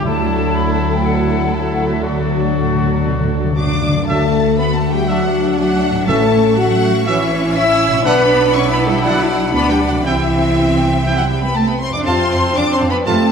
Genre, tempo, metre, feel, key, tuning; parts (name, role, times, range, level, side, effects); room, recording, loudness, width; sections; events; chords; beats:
cinematic; 120 BPM; 4/4; straight; D major; A4 = 444 Hz
warm symphonic violin section; melody; 0.0-13.3 s; A4 to E6; -22 LUFS; left 2 dB
hollow flute section; second line; 0.0-13.3 s; D5 to B5; -27 LUFS; left 4 dB
rich symphonic violin section; second line; 0.0-13.1 s; D4 to C#6; -28 LUFS; left 3 dB
bright trombone section; sustained chords; 0.0-13.2 s; C3 to F4; -26 LUFS; right 4 dB
mellow French horn section; sustained chords; 0.0-13.3 s; A3 to E5; -20 LUFS; left 2 dB
concert harp; arpeggios; 0.0-13.3 s; F2 to D5; -24 LUFS; left 9 dB
bright trumpet section; stabs; 0.0-13.2 s; E4 to A5; -25 LUFS; right 1 dB
rich symphonic cello section; bass; 0.0-13.3 s; D2 to E4; -21 LUFS; right 3 dB
rich symphonic double bass section; bass; 0.0-13.1 s; A1 to F2; -22 LUFS; right 4 dB
warm symphonic viola section; accompaniment; 0.1-13.3 s; F#3 to F4; -23 LUFS; right 1 dB
timpani; percussion; 0.1-6.8 s; A2 to D3; -24 LUFS; equal
mellow clarinet; second line; 4.1-13.3 s; C4 to F#4; -26 LUFS; equal
wet scoring stage reverb, RT60 2.0 s; -13 LUFS; side -6 dB against mid
0.0-4.1 A section; 4.1-13.3 A section
timpani fill 2.0-4.1
0.0 Dadd9; 2.0 D; 6.1 A; 8.1 Bm; 10.1 C; 12.1 F
| 0.04 0.54 1.04 1.54 | 2.05 2.56 3.07 3.58 | 4.09 4.59 5.09 5.59 | 6.08 6.58 7.08 7.57 | 8.06 8.56 9.06 9.56 | 10.06 10.56 11.07 11.57 | 12.07 12.58 13.08